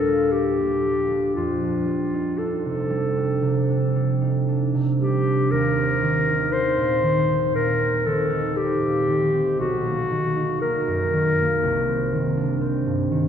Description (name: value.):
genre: classical, impressionist duo for clarinet and harp.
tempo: 58 BPM.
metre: 4/4.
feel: rubato.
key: Eb lydian.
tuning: A4 = 439 Hz.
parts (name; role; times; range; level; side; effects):
warm clarinet; melody; 0.0-12.6 s; F4 to C5; -22 LUFS; left 1 dB; none.
concert harp; accompaniment; 0.0-13.3 s; B1 to F4; -22 LUFS; right 2 dB; none.
room: wet church reverb, RT60 3.1 s.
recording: dark, warm production.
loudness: -20 LUFS.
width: side -8 dB against mid.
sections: 0.0-13.3 A section.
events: none.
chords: 0.0 Ebmaj9; 1.4 F13; 5.5 Eb6; 9.6 Bmaj7; 11.6 Cm9.